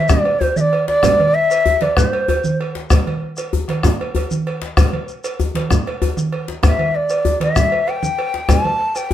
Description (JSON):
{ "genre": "west african traditional, West African drum ensemble", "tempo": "129 BPM (dotted quarters)", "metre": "12/8", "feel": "straight", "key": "unclear", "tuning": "A4 = 438 Hz", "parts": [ { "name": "breathy bass bansuri", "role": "melody", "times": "0.0-2.6, 6.6-9.1 s", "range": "C5 to A5", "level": "-16 LUFS", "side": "equal", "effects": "none" }, { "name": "bombo", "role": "percussion", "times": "0.1-9.0 s", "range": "none", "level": "-18 LUFS", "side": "equal", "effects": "none" }, { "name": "congas", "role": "percussion", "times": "0.1-8.8 s", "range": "none", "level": "-22 LUFS", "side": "right 3 dB", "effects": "none" }, { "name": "djembe", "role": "percussion", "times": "0.1-9.1 s", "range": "none", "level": "-21 LUFS", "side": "left 4 dB", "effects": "none" }, { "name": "shekere", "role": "percussion", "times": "0.1-9.1 s", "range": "none", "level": "-22 LUFS", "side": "left 2 dB", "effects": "none" }, { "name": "cowbell", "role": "percussion", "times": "0.3-9.1 s", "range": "none", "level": "-27 LUFS", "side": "right 3 dB", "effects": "none" } ], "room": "moderate studio reverb, RT60 0.5 s", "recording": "none", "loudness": "-15 LUFS", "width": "side -11 dB against mid", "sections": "0.0-9.1 A section", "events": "none", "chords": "none" }